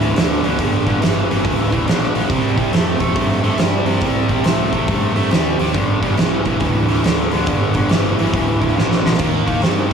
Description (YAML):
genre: blues rock power trio and southern rock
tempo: 139 BPM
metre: 4/4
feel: swing 65% on 8ths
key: G minor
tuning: A4 = 442 Hz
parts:
  - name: sludgy distorted guitar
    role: riff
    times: 0.0-9.9 s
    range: G2 to C4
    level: -18 LUFS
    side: equal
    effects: overdrive, slapback echo
  - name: fuzz fingered electric bass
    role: bass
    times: 0.0-9.9 s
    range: G1 to G2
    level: -22 LUFS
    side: right 1 dB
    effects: overdrive
  - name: oversized low-tuned drum kit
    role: drums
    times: 0.0-9.8 s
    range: crash cymbal, hi-hat, kick drum, snare drum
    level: -19 LUFS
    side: right 1 dB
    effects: none
room: moderate lush hall reverb, RT60 1.8 s, studio reverb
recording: big arena sound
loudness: -14 LUFS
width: side -6 dB against mid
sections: 0.0-9.9 A section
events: drum fill 8.8-9.2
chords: 0.0 Gm; 2.3 C5; 5.7 G5; 9.2 Eb